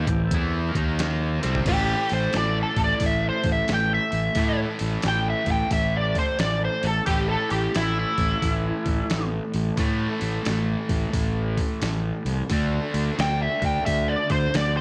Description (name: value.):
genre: blues rock power trio and southern rock.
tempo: 88 BPM.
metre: 4/4.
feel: swing 64% on 8ths.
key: A minor.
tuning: A4 = 440 Hz.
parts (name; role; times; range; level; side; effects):
overdriven tonewheel organ; sustained chords; 0.0-1.6 s; A#3 to A#4; -39 LUFS; equal; slow rotary speaker.
biting overdriven guitar; riff; 0.0-14.8 s; A2 to E4; -32 LUFS; equal; none.
fuzz fingered electric bass; bass; 0.0-14.8 s; A1 to A2; -28 LUFS; equal; overdrive.
trip hop sampler-style drum kit; drums; 0.1-14.8 s; crash cymbal, hi-hat, kick drum, snare drum, toms; -31 LUFS; equal; none.
lead guitar through a small cranked amp; melody; 1.7-14.8 s; E4 to G5; -27 LUFS; equal; wah, overdrive, slapback echo.
room: light reverb.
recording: none.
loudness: -24 LUFS.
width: mono.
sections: 0.0-1.7 A section; 1.7-14.8 B section.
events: drum fill 1.3-1.7; lead electric guitar solo 1.7-14.8.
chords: 0.0 Am; 0.7 D#5; 1.3 Am; 1.7 A5; 12.5 D5.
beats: 0.31 0.99 | 1.66 2.34 3.01 3.69 | 4.36 5.04 5.71 6.39 | 7.07 7.75 8.43 9.11 | 9.79 10.46 11.14 11.82 | 12.51 13.19 13.87 14.55.